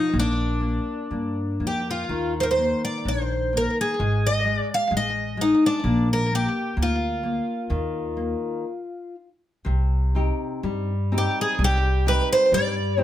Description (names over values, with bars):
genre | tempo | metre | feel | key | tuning
fado-style ballad | 63 BPM | 2/4 | uneven beats, rubato | Eb major, C minor from 9.7 s | A4 = 441 Hz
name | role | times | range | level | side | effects
picked twelve-string acoustic guitar | melody | 0.0-13.0 s | D4 to F5 | -23 LUFS | equal | slapback echo
nylon-string guitar | accompaniment | 0.0-13.0 s | C3 to G4 | -28 LUFS | left 3 dB | none
upright bass | bass | 0.1-13.0 s | G#1 to G2 | -25 LUFS | equal | none
room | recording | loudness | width
light reverb | close, detailed microphones | -21 LUFS | side -12 dB against mid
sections
0.0-9.7 A section; 9.7-13.0 B section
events
stop 8.7-9.7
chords
0.1 Bb; 2.1 Eb5; 4.0 F7#9/G# (rootless); 5.8 Bb; 7.7 Eb5; 8.7 N.C.; 9.7 Cm